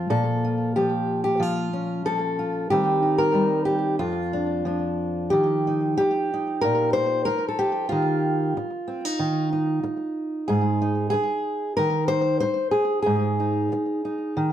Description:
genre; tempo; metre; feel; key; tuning
folk, solo fingerstyle acoustic guitar; 93 BPM; 4/4; straight; unclear; A4 = 440 Hz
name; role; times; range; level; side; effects
fingerpicked steel-string acoustic guitar; solo; 0.0-14.5 s; F2 to C5; -21 LUFS; equal; slapback echo
room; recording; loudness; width
moderate studio reverb, RT60 0.5 s; dark, warm production; -21 LUFS; side -10 dB against mid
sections
0.0-5.3 A section; 5.3-14.5 B section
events
none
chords
0.1 Bbm; 2.7 Eb6; 4.0 Dm/F; 5.3 Ebadd9; 10.5 Ab5

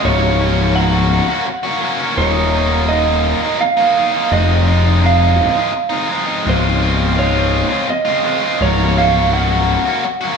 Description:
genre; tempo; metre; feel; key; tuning
post-rock; 84 BPM; 3/4; straight; unclear; A4 = 439 Hz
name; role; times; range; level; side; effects
electric slide guitar; melody; 0.0-10.4 s; C5 to Gb5; -18 LUFS; right 4 dB; none
tight distorted guitar; riff; 0.0-10.4 s; Db2 to Gb4; -17 LUFS; left 1 dB; distortion
fuzz fingered electric bass; bass; 0.0-9.8 s; Db1 to F1; -16 LUFS; left 1 dB; overdrive
room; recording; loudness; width
wet stone room reverb, RT60 1.1 s; band playing live in one room, studio reverb; -13 LUFS; side -6 dB against mid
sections
0.0-10.4 A section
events
none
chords
0.0 Gb/Db; 2.2 Ebm7; 4.3 Fm7; 6.5 Dbmaj7; 8.6 Gb/Db

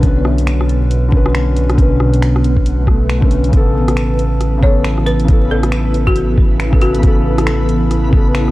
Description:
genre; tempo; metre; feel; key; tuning
future garage; 137 BPM; 4/4; swing 60% on 16ths; unclear; A4 = 438 Hz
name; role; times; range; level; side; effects
felt-muted upright piano; accompaniment; 0.0-8.5 s; C#3 to B4; -18 LUFS; left 1 dB; sidechain pumping, tape echo
ethereal airy pad; sustained chords; 0.0-8.5 s; B2 to B4; -21 LUFS; right 2 dB; ensemble chorus, built-in reverb, sidechain pumping
warm sub bass; bass; 0.0-8.5 s; A1 to B1; -16 LUFS; equal; sidechain pumping
electronic kick drum; drums; 0.0-8.2 s; none; -12 LUFS; equal; vintage 12-bit sampler grit
garage drum kit; drums; 0.0-8.5 s; finger snaps, hi-hat, rim click; -24 LUFS; equal; vintage 12-bit sampler grit
swell; sound effects; 2.8-3.5 s; none; -28 LUFS; left 1 dB; none
backwards swelling texture; texture; 4.5-8.5 s; B3 to B4; -30 LUFS; equal; built-in reverb
folk marimba with hard mallets; melody; 4.6-7.4 s; F#4 to C#5; -23 LUFS; left 2 dB; tape echo
room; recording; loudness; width
digital ambience; dry, gritty hardware recording, vinyl crackle; -11 LUFS; side -18 dB against mid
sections
0.0-3.5 A section; 3.5-8.5 B section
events
swell 2.8-3.5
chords
0.0 Bmadd9; 3.5 Aadd9

